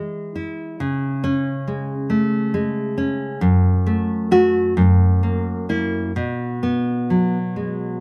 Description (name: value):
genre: romantic piece for solo classical guitar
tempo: 42-47 BPM (dotted quarters)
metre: 6/8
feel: rubato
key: unclear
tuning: A4 = 435 Hz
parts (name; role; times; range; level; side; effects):
- nylon-string guitar; solo; 0.0-8.0 s; F#2 to F#4; -20 LUFS; equal; none
room: moderate booth ambience, RT60 0.2 s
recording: none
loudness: -20 LUFS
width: mono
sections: 0.0-8.0 A section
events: none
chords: 0.0 E; 0.8 C#5; 3.4 F#m; 4.8 F#7; 6.2 B5